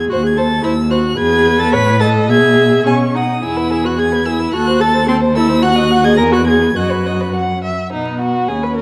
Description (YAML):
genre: quick classical-period movement for string quartet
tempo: 100-114 BPM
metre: 2/4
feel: rubato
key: E major, B major from 5.6 s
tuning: A4 = 438 Hz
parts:
  - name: warm violin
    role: melody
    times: 0.0-8.8 s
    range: F#5 to B6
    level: -23 LUFS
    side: equal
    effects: none
  - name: warm viola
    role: accompaniment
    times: 0.0-8.8 s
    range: B3 to B4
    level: -19 LUFS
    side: equal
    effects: none
  - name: rich cello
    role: bass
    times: 0.0-8.8 s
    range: D#2 to B2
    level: -18 LUFS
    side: equal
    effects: none
  - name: warm violin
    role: second line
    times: 0.1-8.8 s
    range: D#4 to G#5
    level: -22 LUFS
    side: equal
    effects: none
room: moderate concert hall reverb, RT60 1.9 s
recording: vinyl crackle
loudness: -14 LUFS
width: mono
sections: 0.0-7.9 A section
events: none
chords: 0.1 G#7b9b13/D#; 1.2 E; 1.7 A; 2.3 E/B; 2.9 B; 3.4 E; 4.5 D#dim7; 5.6 D#m; 6.2 E; 6.8 B/F#; 7.9 B